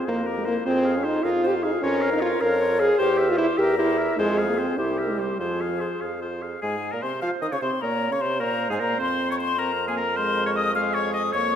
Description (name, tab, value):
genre	quick classical-period movement for wind quintet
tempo	102 BPM (dotted quarters)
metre	6/8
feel	straight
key	F minor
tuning	A4 = 440 Hz
part	hollow concert flute	melody	0.0-11.6 s	G4 to F6	-28 LUFS	left 7 dB	none
part	clear oboe	second line	0.0-11.6 s	Ab4 to F5	-30 LUFS	left 2 dB	none
part	mellow French horn	accompaniment	0.0-11.6 s	F3 to Bb4	-25 LUFS	equal	none
part	warm clarinet	accompaniment	0.0-11.6 s	E4 to Db5	-31 LUFS	right 7 dB	none
part	mellow bassoon	bass	0.1-11.6 s	C2 to F3	-30 LUFS	right 3 dB	none
room	wet concert hall reverb, RT60 1.9 s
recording	none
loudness	-21 LUFS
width	side -9 dB against mid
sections	0.0-6.6 A section; 6.6-11.6 A section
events	none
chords	0.1 C7/F; 0.7 Fm; 1.8 Bbm/F; 3.0 C7/E; 4.2 Fm; 4.8 C7; 5.4 Fm; 6.6 Fm/Ab; 7.8 Bbm; 8.4 Abadd9; 9.0 F5; 9.6 Fmadd11; 10.2 Fm